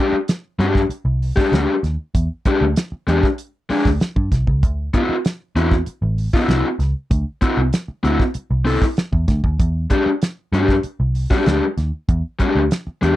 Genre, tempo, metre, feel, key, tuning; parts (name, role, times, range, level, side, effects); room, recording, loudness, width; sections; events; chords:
funk; 97 BPM; 4/4; straight; A4 = 436 Hz
raw garage guitar; accompaniment; 0.0-13.2 s; G#3 to A4; -18 LUFS; left 2 dB; overdrive
vintage muted picked electric bass; bass; 0.1-13.2 s; A1 to G2; -19 LUFS; equal
damped 70s drum kit; drums; 0.3-13.2 s; hi-hat, kick drum, snare drum; -19 LUFS; right 1 dB
little or no reverb; dry, close 1970s-style studio recording; -16 LUFS; side -15 dB against mid
0.0-13.2 A section
0.0 E7#9 (rootless); 4.6 D9; 9.6 E7#9